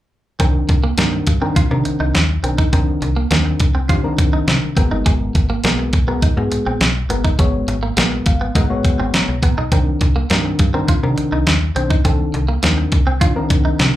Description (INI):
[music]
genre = early-eighties boogie funk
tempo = 103 BPM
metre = 4/4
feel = straight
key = unclear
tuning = A4 = 440 Hz
[part]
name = mellow FM electric piano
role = accompaniment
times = 0.4-14.0 s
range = Eb3 to Bb5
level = -22 LUFS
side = left 3 dB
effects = chorus, slapback echo
[part]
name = clean electric guitar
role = riff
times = 0.4-13.8 s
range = Ab3 to F4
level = -25 LUFS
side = right 4 dB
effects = analog chorus, slapback echo
[part]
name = slap-like FM bass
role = bass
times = 0.4-13.9 s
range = G1 to C3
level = -19 LUFS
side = equal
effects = none
[part]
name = crisp 8-bit digital drum machine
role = drums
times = 0.4-13.9 s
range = hi-hat, kick drum, snare drum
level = -16 LUFS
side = equal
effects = overdrive
[sound]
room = light reverb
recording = live gig heard through the venue's PA, club reverb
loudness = -14 LUFS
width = side -14 dB against mid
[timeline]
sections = 0.4-14.0 A section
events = FM electric piano fill 8.0-9.7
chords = 0.4 Cm9; 4.8 Abm9; 9.7 Cm9